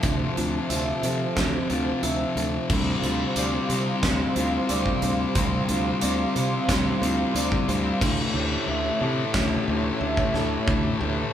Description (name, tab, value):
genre	post-rock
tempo	90 BPM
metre	4/4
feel	straight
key	unclear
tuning	A4 = 439 Hz
part	hollow soft pad	sustained chords	0.0-11.3 s	F4 to C6	-32 LUFS	right 3 dB	ensemble chorus
part	electric guitar through a small old amp	arpeggios	0.0-11.3 s	D3 to E5	-31 LUFS	right 1 dB	none
part	thick fuzz guitar	riff	0.0-11.3 s	F2 to C4	-26 LUFS	left 3 dB	distortion
part	modern bright fingered electric bass	bass	0.0-11.2 s	D2 to C3	-29 LUFS	right 1 dB	none
part	big rock drum kit	drums	0.0-10.8 s	crash cymbal, hi-hat, kick drum, snare drum	-28 LUFS	right 1 dB	none
room	moderate large studio reverb, RT60 1.2 s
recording	band playing live in one room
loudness	-22 LUFS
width	side -10 dB against mid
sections	0.0-11.3 A section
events	build-up 0.0-11.3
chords	0.0 Fmaj7/D; 2.7 Csus4/D; 8.0 A7/D